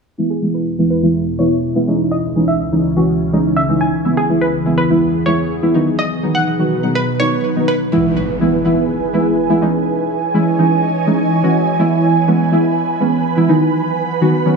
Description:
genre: pop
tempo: 124 BPM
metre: 4/4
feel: straight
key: E major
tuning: A4 = 442 Hz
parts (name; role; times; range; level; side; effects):
- deep mellow chord stab; accompaniment; 0.2-14.6 s; D#3 to F#4; -15 LUFS; equal; chorus, low-pass filter
- ethereal airy pad; sustained chords; 0.6-14.6 s; C#2 to B5; -18 LUFS; right 2 dB; ensemble chorus, built-in reverb, low-pass filter
- analog pluck; melody; 0.3-7.8 s; G#4 to G#5; -22 LUFS; equal; chorus, low-pass filter, tape echo
- impact; sound effects; 7.9-9.9 s; none; -27 LUFS; right 1 dB; none
room: light reverb, digital ambience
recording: studio ambience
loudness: -13 LUFS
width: side -4 dB against mid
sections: 0.2-7.9 A section; 7.9-14.6 B section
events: filter sweep 0.2-7.9; impact 7.9-9.9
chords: 0.2 E; 1.9 C#madd9; 4.1 E; 5.7 B; 7.9 E; 9.6 C#madd9; 11.8 E; 13.5 B

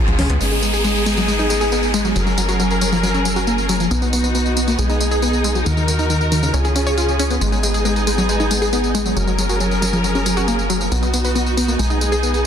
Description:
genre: uplifting trance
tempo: 137 BPM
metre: 4/4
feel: straight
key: G# dorian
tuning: A4 = 440 Hz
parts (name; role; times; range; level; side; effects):
- rich studio string section; sustained chords; 0.0-12.5 s; C#3 to A#4; -21 LUFS; equal; low-pass filter
- wide unison pluck; arpeggios; 0.0-12.3 s; C#3 to C#5; -20 LUFS; left 1 dB; ping-pong delay
- tight sequencer bass; bass; 0.1-12.5 s; F#1 to D#2; -21 LUFS; equal; none
- techno drum kit; drums; 0.1-12.4 s; hi-hat, tambourine, toms; -24 LUFS; equal; none
- downlifter; sound effects; 0.4-3.9 s; none; -25 LUFS; left 1 dB; none
room: moderate concert hall reverb, RT60 1.8 s, digital ambience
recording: dense, heavily limited modern master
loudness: -15 LUFS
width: side -8 dB against mid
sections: 0.4-12.5 A section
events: band accent 0.0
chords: 0.4 G#m; 2.2 F#add9; 3.9 B; 4.8 G#m/B; 5.7 D#m; 6.5 C#; 7.4 G#m; 9.2 F#add9; 10.9 B; 11.8 G#m/B

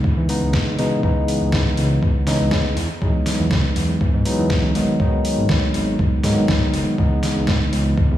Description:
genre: nu-disco, nu disco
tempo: 121 BPM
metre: 4/4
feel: swing 54% on 16ths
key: C# minor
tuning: A4 = 440 Hz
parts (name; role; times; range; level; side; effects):
- tine electric piano; accompaniment; 0.0-8.2 s; C#3 to D#4; -21 LUFS; equal; medium tremolo, sidechain pumping, dub echo
- fat analog bass; bass; 0.0-8.2 s; F#1 to C#3; -22 LUFS; equal; none
- electronic kick drum; drums; 0.0-8.1 s; none; -20 LUFS; equal; none
- pop drum kit; drums; 0.3-7.8 s; hi-hat, snare drum; -25 LUFS; equal; overdrive, dub echo
room: light reverb, digital ambience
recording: echo-heavy mix, studio reverb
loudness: -16 LUFS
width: side -12 dB against mid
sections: 0.0-8.2 A section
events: none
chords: 0.0 C#m9; 2.8 Emaj9; 4.8 G#m7; 7.0 C#m9

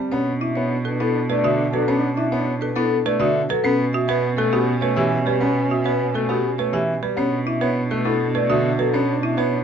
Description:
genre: classical, minimalist pattern music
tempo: 102 BPM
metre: 3/4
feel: straight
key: B minor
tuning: A4 = 439 Hz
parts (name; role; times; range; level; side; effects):
- vibraphone with medium mallets; melody; 0.0-9.6 s; G4 to E5; -24 LUFS; left 6 dB; none
- bright concert grand piano; accompaniment; 0.0-9.6 s; D3 to B3; -26 LUFS; left 1 dB; none
- folk marimba with hard mallets; arpeggios; 0.0-9.6 s; C4 to B4; -24 LUFS; right 3 dB; none
- alto flute; second line; 0.1-9.6 s; C#4 to D4; -28 LUFS; right 2 dB; none
- rich cello; bass; 0.1-9.6 s; B2; -25 LUFS; right 3 dB; none
room: light reverb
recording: dark, warm production, nothing above 7.6 kHz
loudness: -18 LUFS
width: side -8 dB against mid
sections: 0.1-9.6 A section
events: none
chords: 0.1 Bm9; 3.6 A9/B; 7.2 Bm9

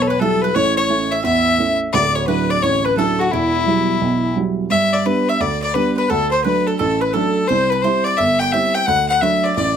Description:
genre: celtic folk, Celtic hornpipe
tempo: 173 BPM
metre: 4/4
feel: swing 64% on 8ths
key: E dorian, G major from 4.7 s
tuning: A4 = 440 Hz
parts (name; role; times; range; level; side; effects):
- rich fiddle; melody; 0.0-9.8 s; E4 to G5; -18 LUFS; left 4 dB; none
- mandolin; second line; 0.0-9.8 s; E4 to G5; -23 LUFS; right 3 dB; none
- mellow hollow wooden flute; second line; 0.0-4.3 s; E4 to E5; -24 LUFS; left 5 dB; slapback echo
- dark upright piano; accompaniment; 0.0-9.8 s; D1 to E4; -19 LUFS; right 5 dB; none
room: light reverb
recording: close, detailed microphones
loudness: -15 LUFS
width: side -8 dB against mid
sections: 0.0-4.7 A section; 4.7-9.8 B section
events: none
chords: 0.0 Emadd9; 0.6 A; 1.9 Dadd9; 3.3 Emadd9; 4.7 G; 6.1 D; 7.5 C; 8.9 D

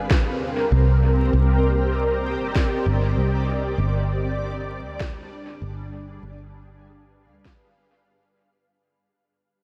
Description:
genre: ambient dub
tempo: 98 BPM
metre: 4/4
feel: swing 53% on 16ths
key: unclear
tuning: A4 = 440 Hz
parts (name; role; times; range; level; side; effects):
- granular cloud pad; sustained chords; 0.0-8.7 s; G3 to F5; -28 LUFS; equal; built-in reverb, ensemble chorus
- fingered electric bass; bass; 0.0-8.7 s; G1 to Eb2; -24 LUFS; equal; none
- electronic kick drum; drums; 0.1-7.6 s; none; -24 LUFS; equal; none
- electronic snare drum; drums; 0.1-7.6 s; none; -34 LUFS; equal; dub echo
room: moderate huge ambient reverb, RT60 7.6 s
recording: dreamy mix soaked in reverb, vinyl crackle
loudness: -22 LUFS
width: mono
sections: 0.0-8.7 A section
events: fade-out 0.0-8.7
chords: 0.0 Cm9; 3.8 G7b9

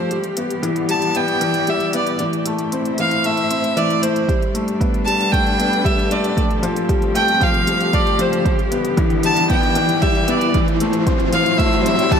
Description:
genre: piano and strings electronica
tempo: 115 BPM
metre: 4/4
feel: straight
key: unclear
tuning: A4 = 440 Hz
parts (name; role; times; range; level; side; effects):
- clear violin; melody; 0.0-12.2 s; C5 to A5; -20 LUFS; right 1 dB; shimmer reverb
- muted string quartet; sustained chords; 0.0-12.2 s; A2 to D5; -25 LUFS; left 2 dB; low-pass filter, shimmer reverb
- felt-muted upright piano; riff; 0.0-12.2 s; E3 to C4; -20 LUFS; left 2 dB; ping-pong delay, shimmer reverb
- electronic hi-hat; drums; 0.1-12.2 s; none; -31 LUFS; equal; overdrive, high-pass filter on hats
- electronic kick drum; drums; 4.3-12.2 s; none; -20 LUFS; right 1 dB; overdrive
- riser and swell; sound effects; 6.3-12.2 s; none; -25 LUFS; equal; none
room: wet echo chamber reverb, RT60 1.5 s, studio reverb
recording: none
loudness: -15 LUFS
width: side -7 dB against mid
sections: 0.0-12.2 A section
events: build-up 0.0-12.2; riser 6.3-12.2; swell 11.6-12.2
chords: 0.1 Em7; 2.2 Am; 4.3 Gadd9; 6.4 Fadd9; 8.5 Em7; 10.5 Am

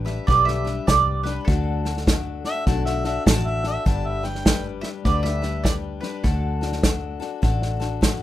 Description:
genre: honky-tonk and classic country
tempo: 101 BPM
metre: 4/4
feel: swing 62% on 8ths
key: G major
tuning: A4 = 440 Hz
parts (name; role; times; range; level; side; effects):
- picked steel-string acoustic guitar; accompaniment; 0.0-8.2 s; G2 to B4; -29 LUFS; left 9 dB; none
- vintage muted picked electric bass; bass; 0.0-8.2 s; G1 to D2; -25 LUFS; equal; none
- mandolin; melody; 0.1-7.2 s; A4 to E5; -24 LUFS; right 6 dB; none
- unplugged drum kit; drums; 0.1-8.2 s; hi-hat, kick drum, snare drum; -21 LUFS; equal; none
- mellow harmonica; second line; 2.5-4.6 s; E5 to A5; -28 LUFS; equal; none
room: little or no reverb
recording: rough home demo mix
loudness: -20 LUFS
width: side -13 dB against mid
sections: 0.0-8.2 A section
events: none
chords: 0.0 G; 1.5 D; 3.9 G; 6.2 D

